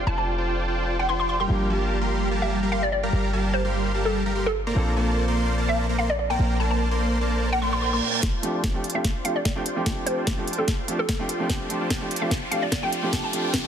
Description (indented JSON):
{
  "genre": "future bass",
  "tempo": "147 BPM",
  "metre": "4/4",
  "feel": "swing 54% on 16ths, half-time",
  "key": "F major",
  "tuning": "A4 = 436 Hz",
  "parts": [
    { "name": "hollow square pluck", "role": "melody", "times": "0.0-13.3 s", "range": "A4 to C6", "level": "-28 LUFS", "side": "equal", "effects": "analog chorus, sidechain pumping, digital delay" },
    { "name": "clear concert grand piano", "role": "accompaniment", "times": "0.0-13.7 s", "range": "F3 to A4", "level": "-30 LUFS", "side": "right 1 dB", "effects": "sidechain pumping, ping-pong delay" },
    { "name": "dense compressed supersaw", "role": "riff", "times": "0.0-13.7 s", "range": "G3 to C6", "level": "-27 LUFS", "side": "equal", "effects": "sidechain pumping, low-pass filter" },
    { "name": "warm 808-style bass", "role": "bass", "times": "0.0-8.0 s", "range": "F1 to Bb1", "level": "-26 LUFS", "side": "equal", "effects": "sidechain pumping" },
    { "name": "reverse cymbal and riser", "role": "sound effects", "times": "7.6-13.7 s", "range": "none", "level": "-32 LUFS", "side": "right 3 dB", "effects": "none" },
    { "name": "electronic kick drum", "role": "drums", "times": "8.2-13.6 s", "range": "none", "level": "-28 LUFS", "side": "equal", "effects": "overdrive" },
    { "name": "trap drum kit", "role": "drums", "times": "8.2-13.6 s", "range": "hi-hat, snare drum", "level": "-29 LUFS", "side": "equal", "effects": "overdrive" }
  ],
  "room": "light reverb",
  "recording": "dense, heavily limited modern master, high-pass filter",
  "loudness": "-22 LUFS",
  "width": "side -8 dB against mid",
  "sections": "0.0-8.2 A section; 8.2-13.7 B section",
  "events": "reverse cymbal 7.6-8.2; build-up 8.2-13.7; drum fill 8.2-13.7; riser 8.2-13.7; filter sweep on supersaw synth 8.2-13.7",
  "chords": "0.0 F69; 1.5 Gm7; 4.8 Bbmaj9; 8.2 F69",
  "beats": "| 0.07 0.47 0.88 1.29 | 1.70 2.11 2.52 2.92 | 3.33 3.74 4.15 4.56 | 4.96 5.37 5.78 6.19 | 6.60 7.00 7.41 7.82 | 8.23 8.64 9.05 9.45 | 9.86 10.27 10.68 11.09 | 11.49 11.90 12.31 12.72 | 13.13 13.54"
}